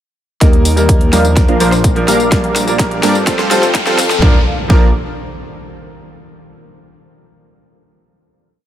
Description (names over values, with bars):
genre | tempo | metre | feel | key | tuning
EDM, festival progressive house | 126 BPM | 4/4 | straight | Bb major | A4 = 441 Hz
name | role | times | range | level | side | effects
bright baby grand piano | accompaniment | 0.4-4.9 s | F3 to Bb4 | -18 LUFS | right 2 dB | sidechain pumping, tape echo
lush unison pad | sustained chords | 1.8-4.4 s | A4 to Eb6 | -25 LUFS | left 2 dB | chorus, phaser, sidechain pumping
supersaw stab | riff | 0.4-4.9 s | F3 to F5 | -16 LUFS | equal | sidechain pumping, low-pass filter, tape echo
wide detuned saw bass | bass | 0.4-4.9 s | F1 to G2 | -18 LUFS | equal | chorus, tube saturation, sidechain pumping
big-room dance drum kit | drums | 0.4-4.2 s | hi-hat, rim click, snare drum, tambourine | -19 LUFS | equal | overdrive, high-pass filter on snare, high-pass filter on hats, high-pass filter on perc
electronic kick drum | drums | 0.4-4.8 s | none | -11 LUFS | equal | none
riser and impact | sound effects | 1.9-6.1 s | none | -24 LUFS | equal | none
room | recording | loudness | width
light reverb | high-pass filter | -9 LUFS | side -11 dB against mid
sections
0.4-4.2 build; 4.2-6.1 final chord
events
build-up 0.4-4.2; drum fill 0.4-4.2; filter sweep on supersaw synth 0.4-4.2; filter sweep on analog synth pad 0.4-4.2; filter sweep 0.4-4.2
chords
0.4 Eb; 1.4 Bb; 2.3 Gm; 3.3 Fadd9; 4.2 Bb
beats
| 0.41 0.89 1.37 1.84 | 2.32 2.79 3.27 3.75 | 4.22 4.70 5.17 5.65